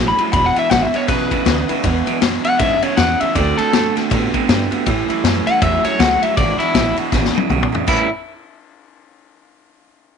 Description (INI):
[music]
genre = rockabilly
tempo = 159 BPM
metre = 4/4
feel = swing 61% on 8ths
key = A major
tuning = A4 = 440 Hz
[part]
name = picked steel-string acoustic guitar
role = accompaniment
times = 0.0-8.1 s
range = E2 to F#4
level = -26 LUFS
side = left 11 dB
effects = none
[part]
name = electric guitar through a small old amp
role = riff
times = 0.0-8.1 s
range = E2 to B4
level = -20 LUFS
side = right 16 dB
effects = none
[part]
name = upright bass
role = bass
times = 0.0-8.1 s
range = E1 to A2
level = -22 LUFS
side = right 1 dB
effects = none
[part]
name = electric guitar at the edge of break-up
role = melody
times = 0.1-8.1 s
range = E4 to B5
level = -18 LUFS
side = left 3 dB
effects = tape echo
[part]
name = vintage drum kit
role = drums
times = 0.2-8.0 s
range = crash cymbal, kick drum, ride cymbal, snare drum, toms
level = -19 LUFS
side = left 5 dB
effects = none
[sound]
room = light reverb, studio ambience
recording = 1960s-style stereo with parts hard left and right, nothing above 10.6 kHz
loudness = -14 LUFS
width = side -6 dB against mid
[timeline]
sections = 0.0-7.9 A section; 7.9-9.4 B section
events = drum fill 7.1-7.9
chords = 0.3 E7; 3.4 D7; 4.9 A7; 6.4 E7; 7.9 A9